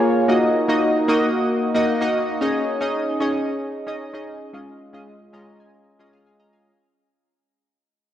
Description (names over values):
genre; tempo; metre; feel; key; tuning
pop; 113 BPM; 4/4; straight; Db major; A4 = 440 Hz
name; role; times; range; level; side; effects
chorused retro synth keys; accompaniment; 0.0-6.8 s; Ab3 to Bb5; -19 LUFS; equal; none
room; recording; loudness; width
wet lush hall reverb, RT60 2.8 s; home recording on cassette; -18 LUFS; side -11 dB against mid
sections
0.0-6.7 A section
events
fade-out 0.0-6.7; synth keys fill 5.1-6.7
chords
0.3 Ebm/Bb; 2.4 Absus4; 4.5 Dbadd9/Ab